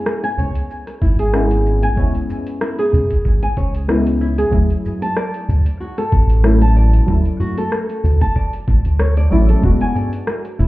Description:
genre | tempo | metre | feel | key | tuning
organic downtempo | 94 BPM | 4/4 | swing 55% on 16ths | unclear | A4 = 440 Hz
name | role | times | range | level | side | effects
deep mellow chord stab | accompaniment | 0.0-10.7 s | F#3 to F#4 | -21 LUFS | left 1 dB | chorus, sidechain pumping, ping-pong delay
flamenco guitar | arpeggios | 0.0-10.7 s | E4 to A5 | -23 LUFS | equal | ping-pong delay
deep house drum kit | drums | 0.1-10.7 s | hi-hat, rim click, shaker | -24 LUFS | equal | overdrive
round analog bass | bass | 0.4-10.7 s | E1 to D2 | -14 LUFS | equal | none
udu | percussion | 0.4-10.7 s | none | -23 LUFS | equal | none
electronic kick drum | drums | 1.0-9.8 s | none | -17 LUFS | equal | none
room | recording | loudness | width
light reverb, digital ambience | heard muffled through a wall, club reverb, EQ | -14 LUFS | side -18 dB against mid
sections
0.0-10.7 A section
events
none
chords
0.0 C#m7; 4.5 Dmaj7; 9.6 E7

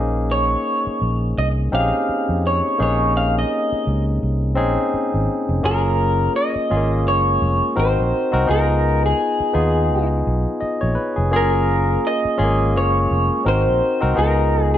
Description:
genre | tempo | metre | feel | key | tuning
lush 1970s-style soul | 84 BPM | 4/4 | swing 58% on 16ths | unclear | A4 = 440 Hz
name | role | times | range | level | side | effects
barky tine electric piano | accompaniment | 0.0-14.8 s | Ab3 to Eb5 | -21 LUFS | left 2 dB | overdrive
fingered electric bass | bass | 0.0-14.8 s | F1 to F2 | -20 LUFS | equal | none
electric guitar through a small old amp | melody | 0.3-14.8 s | Ab4 to F5 | -21 LUFS | equal | wide subtle chorus, slapback echo
room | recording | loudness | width
light reverb | dark, warm production | -16 LUFS | side -11 dB against mid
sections
0.0-5.6 A section; 5.6-14.8 B section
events
none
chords
0.0 Bbm11; 5.6 Gbmaj7; 7.8 Ab7; 8.5 Db7; 11.3 Gbmaj7; 13.5 Ab7; 14.2 Db7

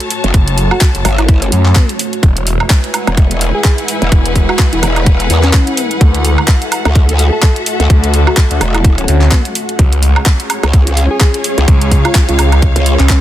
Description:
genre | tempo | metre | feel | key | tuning
bass house | 127 BPM | 4/4 | swing 57% on 16ths | unclear | A4 = 435 Hz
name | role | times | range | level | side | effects
deep dark ambient pad | sustained chords | 0.0-13.2 s | G#3 to F#5 | -22 LUFS | equal | chorus, built-in reverb, vintage 12-bit sampler grit, sidechain pumping
garage drum kit | drums | 0.0-13.2 s | handclaps, hi-hat, woodblock | -17 LUFS | right 2 dB | overdrive
warm symphonic string section | texture | 0.0-13.2 s | C#4 to A5 | -20 LUFS | left 2 dB | sidechain pumping
growl bass | bass | 0.2-13.0 s | E1 to E2 | -12 LUFS | equal | distortion, chorus, sidechain pumping
phased detuned saw bass | bass | 0.3-13.2 s | E1 to F#2 | -12 LUFS | equal | phaser, overdrive, sidechain pumping
electronic kick drum | drums | 0.3-13.2 s | none | -9 LUFS | equal | overdrive
soft struck synth lead | melody | 0.7-13.2 s | C#4 to A4 | -20 LUFS | equal | chorus, cassette tape, digital delay
room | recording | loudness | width
little or no reverb | dense, heavily limited modern master | -9 LUFS | side -13 dB against mid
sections
0.0-13.2 A section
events
none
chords
0.0 F#m; 2.2 E; 6.0 D; 9.8 C#

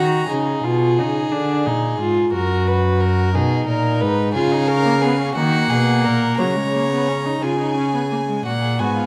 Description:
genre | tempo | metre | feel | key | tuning
classical, baroque-style fugue for string quartet | 59 BPM (dotted quarters) | 6/8 | straight | unclear | A4 = 440 Hz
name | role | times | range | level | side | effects
rich violin | melody | 0.0-0.3, 4.3-9.1 s | E#5 to A#5 | -28 LUFS | equal | none
rich violin | second line | 0.0-9.1 s | E#4 to C#5 | -27 LUFS | equal | none
warm viola | accompaniment | 0.0-9.1 s | F#3 to F#4 | -23 LUFS | equal | none
warm cello | bass | 0.0-9.1 s | F#2 to D#3 | -22 LUFS | equal | none
room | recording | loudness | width
moderate recital hall reverb, RT60 1.5 s | vinyl crackle | -19 LUFS | mono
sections
0.3-8.5 A section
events
none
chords
0.3 C#7; 1.3 A#7; 2.3 F#add11; 3.3 G#m; 4.3 C#7; 5.4 D#m; 6.4 C#sus4; 7.4 C#; 8.5 F#

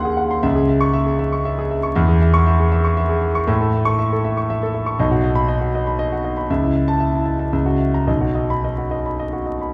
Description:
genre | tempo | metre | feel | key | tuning
classical, virtuoso piano study | 118 BPM | 3/4 | rubato | C# minor | A4 = 440 Hz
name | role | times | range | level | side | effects
warm concert grand piano | solo | 0.0-9.7 s | B1 to C#6 | -19 LUFS | equal | none
room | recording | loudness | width
wet scoring stage reverb, RT60 2.0 s | heard from further back in the room, vinyl crackle | -19 LUFS | mono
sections
0.0-9.7 A section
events
none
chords
0.4 C#m; 2.0 C#m/E; 3.5 A; 5.0 B; 6.5 A/C#; 7.5 F#7/C#; 8.1 B

